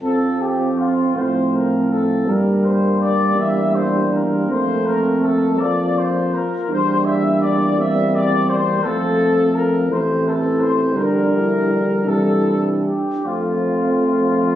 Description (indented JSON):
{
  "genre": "classical, hymn-like piece for brass band",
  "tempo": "54 BPM (dotted quarters)",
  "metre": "12/8",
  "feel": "uneven beats, rubato",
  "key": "F major",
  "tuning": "A4 = 440 Hz",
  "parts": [
    { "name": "mellow trumpet section", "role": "melody", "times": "0.0-14.6 s", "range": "F4 to E5", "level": "-21 LUFS", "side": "left 3 dB", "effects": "none" },
    { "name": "dark French horn section", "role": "second line", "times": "0.0-14.6 s", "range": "A3 to F4", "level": "-24 LUFS", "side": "right 4 dB", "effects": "none" },
    { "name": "clear trombone", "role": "accompaniment", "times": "0.0-14.6 s", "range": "D3 to A3", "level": "-23 LUFS", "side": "right 1 dB", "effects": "none" },
    { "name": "mellow euphonium", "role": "accompaniment", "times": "0.0-14.6 s", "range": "G3 to C4", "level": "-21 LUFS", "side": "equal", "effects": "none" },
    { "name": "mellow tuba", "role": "bass", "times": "0.0-14.6 s", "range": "A1 to A2", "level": "-23 LUFS", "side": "equal", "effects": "none" }
  ],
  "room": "moderate scoring stage reverb, RT60 1.5 s",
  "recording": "recorded on a phone in the room, club reverb",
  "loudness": "-16 LUFS",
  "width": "side -12 dB against mid",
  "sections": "0.0-14.6 A section",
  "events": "none",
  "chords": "0.0 F; 2.3 Edim/G; 4.5 F; 6.7 C7/E; 8.8 F; 10.9 Gm/Bb; 12.0 C; 13.2 F",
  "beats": "| 0.02 1.16 2.27 3.37 | 4.49 5.59 6.68 7.76 | 8.82 9.88 10.94 12.05 | 13.24 14.46"
}